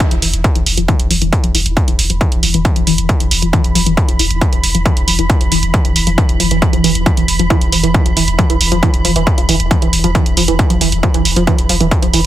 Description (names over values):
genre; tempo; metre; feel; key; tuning
driving peak-time techno; 136 BPM; 4/4; straight; unclear; A4 = 442 Hz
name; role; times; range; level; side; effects
swarming drone; drone; 0.4-12.3 s; E3; -21 LUFS; right 2 dB; built-in reverb, sidechain pumping
electronic hi-hat; drums; 0.0-12.2 s; none; -17 LUFS; right 3 dB; sidechain pumping on hats
electronic kick drum; drums; 0.0-12.0 s; none; -14 LUFS; equal; distortion, overdrive
tight sequenced synth; riff; 0.1-12.2 s; E3 to F3; -18 LUFS; left 1 dB; chorus, phaser, tube saturation, vintage 12-bit sampler grit, sidechain pumping, tape echo
saturated sub bass; bass; 0.1-12.2 s; E1; -18 LUFS; equal; tube saturation, sidechain pumping, low-pass filter
room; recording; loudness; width
light reverb; none; -11 LUFS; side -13 dB against mid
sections
0.0-12.3 A section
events
filter sweep on synth arpeggio sound 0.0-12.3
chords
none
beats
0.00 0.44 0.89 | 1.33 1.77 2.21 2.65 | 3.09 3.53 3.97 4.42 | 4.86 5.30 5.74 6.18 | 6.62 7.06 7.50 7.94 | 8.38 8.83 9.27 9.71 | 10.15 10.59 11.03 11.47 | 11.91